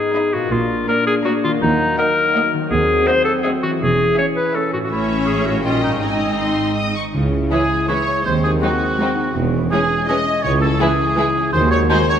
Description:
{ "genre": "cinematic", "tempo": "164 BPM", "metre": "3/4", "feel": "straight", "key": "C# minor", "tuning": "A4 = 440 Hz", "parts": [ { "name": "warm studio violin section", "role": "melody", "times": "0.0-12.2 s", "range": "F#4 to D#6", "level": "-28 LUFS", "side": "left 3 dB", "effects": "none" }, { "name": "bright clarinet", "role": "second line", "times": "0.0-6.9 s", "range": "B#3 to C#5", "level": "-18 LUFS", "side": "left 1 dB", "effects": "none" }, { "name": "warm studio violin section", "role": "second line", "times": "0.0-12.0 s", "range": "B#3 to Eb5", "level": "-26 LUFS", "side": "left 1 dB", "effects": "none" }, { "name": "warm studio viola section", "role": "accompaniment", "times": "0.0-12.0 s", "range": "E3 to Eb4", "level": "-26 LUFS", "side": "equal", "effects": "none" }, { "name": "mellow French horn section", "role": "sustained chords", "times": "0.0-12.2 s", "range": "E3 to F#4", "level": "-24 LUFS", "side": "left 1 dB", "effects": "none" }, { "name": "concert harp", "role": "arpeggios", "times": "0.0-12.2 s", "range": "Ab2 to Eb5", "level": "-26 LUFS", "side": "left 5 dB", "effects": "none" }, { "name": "warm studio cello section", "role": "bass", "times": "0.5-11.8 s", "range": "C#2 to C#3", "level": "-25 LUFS", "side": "right 2 dB", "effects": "none" }, { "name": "warm studio double bass section", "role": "bass", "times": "0.5-11.8 s", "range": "E1 to Eb2", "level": "-25 LUFS", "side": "right 3 dB", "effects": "none" }, { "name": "mellow tuba", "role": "bass", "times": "7.1-11.8 s", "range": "E1 to D#2", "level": "-27 LUFS", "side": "right 4 dB", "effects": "none" }, { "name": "warm oboe", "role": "second line", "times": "7.5-12.2 s", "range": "F#4 to D#5", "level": "-20 LUFS", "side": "right 2 dB", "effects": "none" } ], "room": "wet concert hall reverb, RT60 2.3 s", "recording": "none", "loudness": "-15 LUFS", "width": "side -8 dB against mid", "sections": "0.0-7.1 A section; 7.1-12.2 B section", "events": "none", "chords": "0.0 Abm; 0.5 Bb; 1.6 Ebm; 2.7 G#7/D#; 3.8 C#m/E; 4.9 A; 5.6 D#7/A#; 6.0 G#; 7.1 C#m; 8.2 G#7/D#; 9.3 C#m/E; 10.4 C#m; 11.5 G#5/D#" }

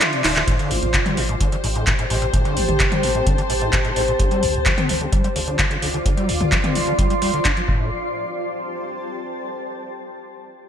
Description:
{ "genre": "acid house", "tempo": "129 BPM", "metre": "4/4", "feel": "straight", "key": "A minor", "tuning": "A4 = 440 Hz", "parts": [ { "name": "dark studio string section", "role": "sustained chords", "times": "0.0-7.7 s", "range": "C5 to E5", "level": "-28 LUFS", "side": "left 6 dB", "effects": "sidechain pumping, low-pass filter" }, { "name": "overdriven acid bass", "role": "riff", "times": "0.0-7.9 s", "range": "A1 to D4", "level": "-26 LUFS", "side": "equal", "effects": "distortion, wide subtle chorus, ping-pong delay" }, { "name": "electro analog drum machine", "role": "drums", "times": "0.0-7.7 s", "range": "congas, handclaps, hi-hat, ride cymbal, toms", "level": "-22 LUFS", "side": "equal", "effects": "gated reverb" }, { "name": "granular cloud pad", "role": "texture", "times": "0.0-9.7 s", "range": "F4 to C6", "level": "-25 LUFS", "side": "right 1 dB", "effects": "built-in reverb, wide subtle chorus, sidechain pumping" }, { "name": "round analog bass", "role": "bass", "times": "0.2-7.9 s", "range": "D1 to D2", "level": "-27 LUFS", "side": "equal", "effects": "sidechain pumping" }, { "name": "electronic kick drum", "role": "drums", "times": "0.5-7.8 s", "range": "none", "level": "-21 LUFS", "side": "equal", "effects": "none" } ], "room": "moderate lush hall reverb, RT60 2.2 s", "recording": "bright 1980s-style digital production", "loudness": "-18 LUFS", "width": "side -8 dB against mid", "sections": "0.5-7.9 A section; 7.9-9.8 B section", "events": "break 0.0-0.5; drum fill 0.2; filter sweep on string section 0.5-7.9", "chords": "0.5 Am7; 4.2 Dm7; 7.7 Am7" }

